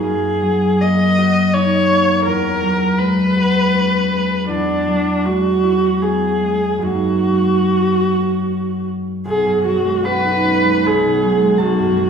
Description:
classical, impressionist duo for viola and harp; 71-83 BPM; 3/4; rubato; F# mixolydian; A4 = 445 Hz
warm viola; melody; 0.0-12.1 s; D4 to D#5; -17 LUFS; right 1 dB
concert harp; accompaniment; 0.0-12.1 s; B1 to B5; -17 LUFS; equal
wet recital hall reverb, RT60 1.5 s; recorded in a church or concert hall; -14 LUFS; side -6 dB against mid
0.0-9.3 A section; 9.3-12.1 B section
0.0 F#69; 2.3 E69; 4.5 E9; 6.8 F#69; 9.3 B69; 10.9 F#sus24/B
| 0.03 0.81 1.54 | 2.26 2.99 3.74 | 4.50 5.27 6.03 | 6.83 7.65 8.46 | 9.27 10.06 10.87 | 11.62

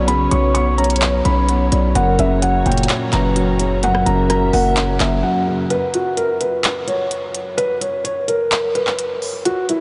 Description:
hip hop, trap; 128 BPM; 4/4; half-time; A4 = 438 Hz
felt-muted upright piano; melody; 0.0-9.8 s; E4 to C#6; -22 LUFS; equal; low-pass filter, delay
hollow clarinet-like synth lead; second line; 0.0-5.7 s; A#4 to D5; -28 LUFS; equal; chorus, delay
dark grand piano; accompaniment; 0.0-5.7 s; F#2 to C#5; -24 LUFS; equal; subtle chorus, low-pass filter
muted studio string section; sustained chords; 0.0-5.7 s; F#3 to A#5; -32 LUFS; equal
hard-hitting 808-style bass; bass; 0.0-5.2 s; F#1 to B1; -21 LUFS; equal
trap drum kit; drums; 0.1-9.8 s; handclaps, hi-hat, rim click; -26 LUFS; equal
wet huge ambient reverb, RT60 8.0 s; dreamy mix soaked in reverb, nothing above 10.6 kHz; -17 LUFS; mono
0.0-5.7 A section; 5.7-9.8 B section
drums muted 5.2-5.7; break 5.7-9.8
0.0 Bsus2; 2.0 F#; 5.7 N.C.
| 0.08 0.55 1.02 1.49 | 1.95 2.42 2.89 3.36 | 3.83 4.30 4.77 5.24 | 5.70 6.17 6.64 7.11 | 7.58 8.05 8.52 8.99 | 9.45

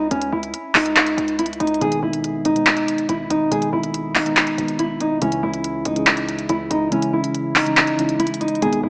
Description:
hip hop, trap; 141 BPM; 4/4; half-time; A4 = 440 Hz
nylon-string guitar; melody; 0.0-8.9 s; C#4 to G#4; -20 LUFS; equal; low-pass filter
hard-hitting 808-style bass; bass; 0.0-8.9 s; G#1 to C#2; -31 LUFS; equal
trap drum kit; drums; 0.1-8.8 s; handclaps, hi-hat; -18 LUFS; equal; vintage 12-bit sampler grit
muted felt-like synth keys; accompaniment; 1.8-8.9 s; B2 to G#4; -23 LUFS; equal; chorus, low-pass filter
moderate lush hall reverb, RT60 1.8 s, digital ambience; small speaker sound; -17 LUFS; side -33 dB against mid
0.0-8.9 A section
kick muted 6.9-8.6
0.0 C#m; 1.8 G#m; 5.2 C#m
| 0.11 0.54 0.96 1.39 | 1.81 2.24 2.66 3.09 | 3.52 3.94 4.37 4.79 | 5.22 5.64 6.07 6.49 | 6.92 7.34 7.77 8.20 | 8.62

